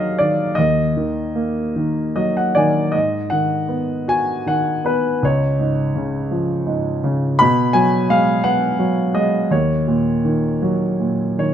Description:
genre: classical, lyrical solo piano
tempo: 49-57 BPM (dotted quarters)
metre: 6/8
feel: rubato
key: unclear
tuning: A4 = 439 Hz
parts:
  - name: warm grand piano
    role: solo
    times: 0.0-11.5 s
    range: C#2 to B5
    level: -16 LUFS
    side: equal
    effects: none
room: light reverb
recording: close, detailed microphones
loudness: -16 LUFS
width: side -9 dB against mid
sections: 0.0-2.9 A section; 2.9-11.5 B section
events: grand piano fill 1.8-2.9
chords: 0.0 Ebm; 2.9 G#m7; 5.2 C#; 7.4 G#m7/B; 9.5 D#m7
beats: | 0.58 1.77 | 2.95 4.09 | 5.22 6.31 | 7.38 8.45 | 9.52 10.63

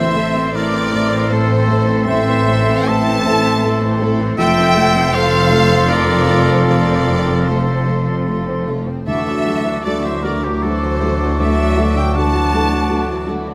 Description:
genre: cinematic, emotional film score for orchestra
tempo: 78 BPM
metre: 3/4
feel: rubato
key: A phrygian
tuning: A4 = 440 Hz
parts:
  - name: rich studio violin section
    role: melody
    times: 0.0-13.3 s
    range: Bb4 to A5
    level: -23 LUFS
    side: equal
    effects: none
  - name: bright clarinet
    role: second line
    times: 0.0-13.5 s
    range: F#4 to A4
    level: -26 LUFS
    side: equal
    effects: none
  - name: dark studio violin section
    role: second line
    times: 0.0-13.5 s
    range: C4 to C5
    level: -32 LUFS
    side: equal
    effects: none
  - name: silver concert flute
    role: second line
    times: 0.0-13.5 s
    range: C6 to D6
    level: -28 LUFS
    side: equal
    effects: none
  - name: warm oboe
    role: second line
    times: 0.0-13.3 s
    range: G4 to F#5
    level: -25 LUFS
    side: equal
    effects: none
  - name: felt-muted upright piano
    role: accompaniment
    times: 0.0-13.5 s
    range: A1 to C5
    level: -26 LUFS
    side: equal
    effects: none
  - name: rich studio viola section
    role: accompaniment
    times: 0.0-13.5 s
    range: E3 to C4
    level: -28 LUFS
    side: equal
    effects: none
  - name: dark French horn section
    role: sustained chords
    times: 0.0-13.5 s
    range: E3 to D4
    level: -26 LUFS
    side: equal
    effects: none
  - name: dark studio double bass section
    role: bass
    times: 0.0-13.5 s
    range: F1 to D2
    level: -23 LUFS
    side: equal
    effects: none
  - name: warm studio cello section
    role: bass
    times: 0.0-13.5 s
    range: D2 to A2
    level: -24 LUFS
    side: equal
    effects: none
  - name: timpani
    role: percussion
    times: 0.0-0.9 s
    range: A2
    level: -29 LUFS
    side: equal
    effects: none
room: moderate concert hall reverb, RT60 1.8 s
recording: close, detailed microphones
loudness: -16 LUFS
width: mono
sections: 0.0-13.5 A section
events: none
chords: 0.0 Am; 4.4 F; 9.1 Dadd9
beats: 0.54 1.30 | 2.06 2.87 3.63 | 4.39 5.14 5.90 | 6.68 7.48 8.27 | 9.07 9.85 10.62 | 11.38 12.15 12.90

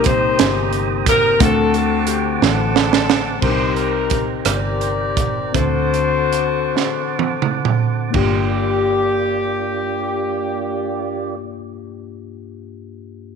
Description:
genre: slow gospel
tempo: 39-60 BPM (dotted quarters)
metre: 6/8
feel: straight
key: G minor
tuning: A4 = 439 Hz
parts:
  - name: mellow saxophone section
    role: melody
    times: 0.0-11.4 s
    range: A3 to D5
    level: -20 LUFS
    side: left 3 dB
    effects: none
  - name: mellow tine electric piano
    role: accompaniment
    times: 0.0-13.4 s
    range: G2 to F#5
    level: -24 LUFS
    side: left 12 dB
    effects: none
  - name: tonewheel organ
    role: sustained chords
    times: 0.0-11.4 s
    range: Bb3 to Eb6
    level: -26 LUFS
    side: right 11 dB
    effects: slow rotary speaker, overdrive
  - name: fingered electric bass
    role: bass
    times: 0.0-11.4 s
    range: G1 to D2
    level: -23 LUFS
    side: right 1 dB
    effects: none
  - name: crisp fusion drum kit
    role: drums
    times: 0.0-8.4 s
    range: crash cymbal, hi-hat, kick drum, rim click, snare drum, toms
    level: -19 LUFS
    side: right 8 dB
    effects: none
room: light reverb, studio reverb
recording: 1960s-style stereo with parts hard left and right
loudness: -16 LUFS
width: side -6 dB against mid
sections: 0.0-3.4 A section; 3.4-8.1 B section; 8.1-13.4 C section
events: drum fill 2.4-3.4, 6.8-8.1; slowing down 3.4-8.1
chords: 0.0 Cm7; 1.4 D7; 3.4 Cm7; 5.5 D7; 8.1 Gm7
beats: 0.39 | 1.40 2.41 | 3.42 4.45 | 5.54 6.75 | 8.15 9.68 | 11.20 12.73

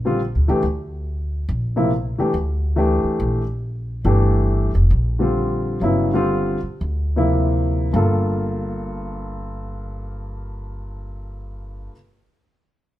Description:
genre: modal jazz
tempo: 99-141 BPM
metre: 4/4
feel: swing 64% on 8ths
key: G dorian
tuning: A4 = 439 Hz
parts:
  - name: warm upright piano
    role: accompaniment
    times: 0.0-11.9 s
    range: G2 to A4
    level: -21 LUFS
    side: left 1 dB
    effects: none
  - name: upright bass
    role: bass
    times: 0.0-11.9 s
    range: F1 to D2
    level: -22 LUFS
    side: equal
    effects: none
room: light reverb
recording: band playing live in one room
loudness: -18 LUFS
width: side -14 dB against mid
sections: 0.0-7.9 A section; 7.9-12.8 B section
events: slowing down 4.0-7.9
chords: 0.0 Gm7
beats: 0.20 | 0.63 1.06 1.48 1.91 | 2.33 2.76 3.19 3.62 | 4.04 4.47 4.91 5.35 | 5.82 6.30 6.81 7.36 | 7.94 8.55 9.16 9.77 | 10.38 10.98 11.59

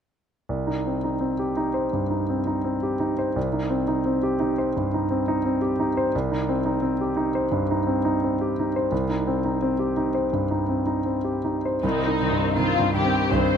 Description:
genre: classical, romantic movement for piano and orchestra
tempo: 85 BPM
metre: 4/4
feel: uneven beats, rubato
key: C minor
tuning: A4 = 440 Hz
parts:
  - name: clear grand piano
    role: melody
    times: 0.5-13.6 s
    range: C2 to C5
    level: -22 LUFS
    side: equal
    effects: none
  - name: warm symphonic violin section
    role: second line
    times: 11.8-13.6 s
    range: Eb4 to C5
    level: -24 LUFS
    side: left 5 dB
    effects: none
  - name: dark symphonic viola section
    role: accompaniment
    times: 11.8-13.6 s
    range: Eb3 to C4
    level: -28 LUFS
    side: equal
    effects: none
  - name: rich symphonic cello section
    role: bass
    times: 11.8-13.4 s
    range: C2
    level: -30 LUFS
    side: right 3 dB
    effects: none
room: light reverb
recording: close, detailed microphones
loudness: -22 LUFS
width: side -8 dB against mid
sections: 0.5-11.8 A section; 11.8-13.6 B section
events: none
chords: 0.5 Cm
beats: | 0.50 1.23 1.93 2.65 | 3.36 4.07 4.77 5.45 | 6.13 6.82 7.51 8.21 | 8.91 9.62 10.34 11.07 | 11.84 12.56 13.32

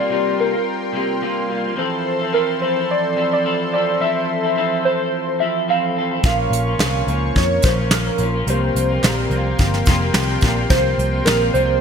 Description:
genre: indie pop, bedroom pop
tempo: 108 BPM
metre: 4/4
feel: swing 55% on 16ths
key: F major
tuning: A4 = 441 Hz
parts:
  - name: warbly lo-fi synth keys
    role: melody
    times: 0.0-11.8 s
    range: Bb4 to F5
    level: -21 LUFS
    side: right 1 dB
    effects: analog chorus, ping-pong delay
  - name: electric guitar at the edge of break-up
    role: accompaniment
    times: 0.0-11.8 s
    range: Bb2 to A4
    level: -24 LUFS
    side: left 4 dB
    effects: lush chorus, warbly pitch drift
  - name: mellow tonewheel organ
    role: accompaniment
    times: 0.0-11.8 s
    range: E3 to A5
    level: -26 LUFS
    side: right 4 dB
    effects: slow rotary speaker, cassette tape
  - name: warm analog pad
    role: sustained chords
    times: 0.0-11.8 s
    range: A4 to Db6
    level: -27 LUFS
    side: left 1 dB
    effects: chorus
  - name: vintage muted picked electric bass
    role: bass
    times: 6.2-11.8 s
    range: F1 to F2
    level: -21 LUFS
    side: equal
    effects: none
  - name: soft brush drum kit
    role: drums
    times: 6.2-11.7 s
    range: hi-hat, kick drum, snare drum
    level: -19 LUFS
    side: equal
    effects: none
  - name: group handclap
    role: percussion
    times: 6.8-11.4 s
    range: none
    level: -33 LUFS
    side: right 6 dB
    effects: none
room: moderate lush hall reverb, RT60 2.1 s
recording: bright 1980s-style digital production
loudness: -16 LUFS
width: side -6 dB against mid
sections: 0.0-11.8 A section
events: tonewheel organ fill 9.6-10.7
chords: 0.0 C7sus4; 1.8 Fmaj7; 6.2 Bbm; 8.5 C7sus4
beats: 0.11 0.67 1.22 | 1.78 2.34 2.90 3.45 | 4.01 4.57 5.13 5.68 | 6.24 6.80 7.36 7.92 | 8.47 9.03 9.59 10.15 | 10.71 11.26

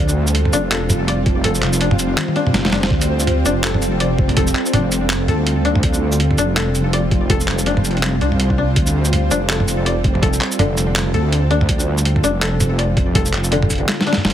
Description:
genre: half-time drum and bass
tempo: 164 BPM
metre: 4/4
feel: swing 58% on 16ths, half-time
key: D minor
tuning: A4 = 440 Hz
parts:
  - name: bowed-like drone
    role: sustained chords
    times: 0.0-14.3 s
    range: G3 to C5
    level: -23 LUFS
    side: right 1 dB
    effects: built-in reverb, sidechain pumping
  - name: koto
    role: arpeggios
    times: 0.0-14.3 s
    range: D3 to D5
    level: -23 LUFS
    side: left 3 dB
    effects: vintage 12-bit sampler grit, digital delay
  - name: deep soft wobble bass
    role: bass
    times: 0.0-14.3 s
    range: F1 to D2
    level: -19 LUFS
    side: equal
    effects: chorus
  - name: boom bap sampler-style drum kit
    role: drums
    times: 0.1-14.3 s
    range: handclaps, hi-hat, shaker, snare drum, toms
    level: -20 LUFS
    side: equal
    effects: overdrive
  - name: electronic kick drum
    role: drums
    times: 1.3-13.8 s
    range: none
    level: -18 LUFS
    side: equal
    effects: overdrive
room: little or no reverb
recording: heavily compressed radio sound, multiband compression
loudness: -14 LUFS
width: side -10 dB against mid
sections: 0.0-14.3 A section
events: kick drops out 1.4-2.9; drum fill 2.2-2.9, 13.9-14.3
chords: 0.0 Dm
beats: 0.35 0.71 1.08 | 1.44 1.81 2.17 2.54 | 2.91 3.27 3.64 4.00 | 4.37 4.74 5.10 5.47 | 5.83 6.20 6.57 6.93 | 7.30 7.66 8.03 8.39 | 8.76 9.13 9.49 9.86 | 10.22 10.59 10.96 11.32 | 11.69 12.05 12.42 12.79 | 13.15 13.52 13.88 14.25

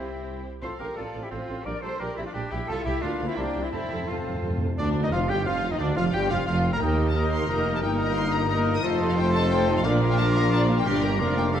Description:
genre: classical, dramatic, fast romantic movement for symphony orchestra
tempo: 176 BPM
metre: 3/4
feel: straight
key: F major, Bb major from 4.8 s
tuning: A4 = 442 Hz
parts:
  - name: dark symphonic violin section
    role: melody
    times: 0.0-11.6 s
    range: C5 to Eb6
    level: -34 LUFS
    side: left 6 dB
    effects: none
  - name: bright clarinet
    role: second line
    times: 0.0-11.6 s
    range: D4 to D5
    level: -35 LUFS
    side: equal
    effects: none
  - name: mellow hollow silver concert flute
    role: second line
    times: 0.0-11.6 s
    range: D5 to Eb6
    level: -35 LUFS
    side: left 2 dB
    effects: none
  - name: rich symphonic violin section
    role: second line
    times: 0.0-11.6 s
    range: D4 to A5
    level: -34 LUFS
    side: left 3 dB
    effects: none
  - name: warm cor anglais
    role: second line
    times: 0.0-11.6 s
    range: Bb3 to G5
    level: -35 LUFS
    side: right 1 dB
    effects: none
  - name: rich symphonic viola section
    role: accompaniment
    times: 0.0-11.6 s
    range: F3 to Bb4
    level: -32 LUFS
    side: equal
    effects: none
  - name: mellow French horn section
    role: sustained chords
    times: 0.0-11.6 s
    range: D3 to A4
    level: -31 LUFS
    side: left 5 dB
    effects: none
  - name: rich symphonic cello section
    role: bass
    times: 0.0-11.6 s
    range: D2 to D5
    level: -31 LUFS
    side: right 2 dB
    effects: none
  - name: rich symphonic double bass section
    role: bass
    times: 0.0-11.6 s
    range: F1 to F2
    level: -30 LUFS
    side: right 3 dB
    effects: none
  - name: warm tuba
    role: bass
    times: 0.0-11.6 s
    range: F1 to Eb2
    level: -32 LUFS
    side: right 3 dB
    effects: none
  - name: timpani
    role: percussion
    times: 3.7-4.7 s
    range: F2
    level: -32 LUFS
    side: equal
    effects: none
  - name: clear trumpet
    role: stabs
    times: 4.8-11.6 s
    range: A4 to Bb5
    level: -33 LUFS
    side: right 2 dB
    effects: none
room: moderate scoring stage reverb, RT60 1.5 s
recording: dark, warm production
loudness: -22 LUFS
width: side -9 dB against mid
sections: 0.0-4.8 A section; 4.8-11.6 B section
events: timpani fill 3.7-4.8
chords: 0.0 C; 0.6 F/A; 1.7 Gm/Bb; 2.7 C; 3.0 Bb; 3.4 C; 3.7 F; 4.8 Ebmaj9; 5.8 Bb; 6.8 Eb; 7.8 Eb/G; 8.8 F7; 9.8 Bb; 10.9 Gm; 11.2 Bb/F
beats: 0.27 | 0.62 0.97 1.32 | 1.66 2.00 2.35 | 2.69 3.03 3.37 | 3.72 4.08 4.43 | 4.78 5.12 5.46 | 5.80 6.14 6.48 | 6.82 7.15 7.49 | 7.83 8.17 8.50 | 8.84 9.17 9.51 | 9.85 10.19 10.52 | 10.86 11.20 11.55

